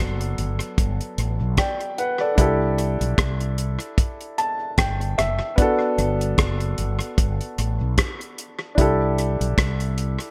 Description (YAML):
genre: lovers rock reggae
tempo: 75 BPM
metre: 4/4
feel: swing 56% on 16ths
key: G major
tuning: A4 = 440 Hz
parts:
  - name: warm concert grand piano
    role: accompaniment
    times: 0.0-10.3 s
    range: F#3 to A5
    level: -27 LUFS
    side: equal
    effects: none
  - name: mellow fretless electric bass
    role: bass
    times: 0.0-10.2 s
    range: F#1 to C2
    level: -26 LUFS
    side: equal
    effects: none
  - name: damped 70s drum kit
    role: drums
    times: 0.2-10.3 s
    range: hi-hat, kick drum, rim click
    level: -24 LUFS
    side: equal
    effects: gated reverb, tape echo
room: small room reverb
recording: none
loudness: -22 LUFS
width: mono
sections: 0.0-10.3 A section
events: grand piano fill 4.0-5.6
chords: 0.0 Gmaj7; 2.4 C6; 5.6 Gmaj7; 8.8 C6